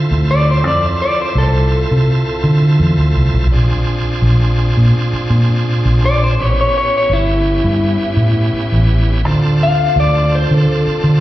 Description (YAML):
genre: straight-eighth soul blues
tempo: 84 BPM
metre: 4/4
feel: straight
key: D dorian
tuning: A4 = 441 Hz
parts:
  - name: bright tonewheel organ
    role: accompaniment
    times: 0.0-11.2 s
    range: B3 to A4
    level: -21 LUFS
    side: right 3 dB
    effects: slow rotary speaker, overdrive, slapback echo
  - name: vintage muted fingered electric bass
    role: bass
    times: 0.1-11.2 s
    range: G1 to D3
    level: -12 LUFS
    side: equal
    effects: none
  - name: electric guitar through a small old amp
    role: melody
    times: 0.3-11.2 s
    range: E4 to F5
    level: -17 LUFS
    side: left 2 dB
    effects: slapback echo, plate reverb
room: little or no reverb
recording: live gig heard through the venue's PA, recital hall reverb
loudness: -11 LUFS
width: side -15 dB against mid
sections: 0.0-11.2 A section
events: clean electric guitar solo 0.0-11.2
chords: 0.0 Dm7; 3.5 Bb7; 6.4 A7; 9.3 Dm7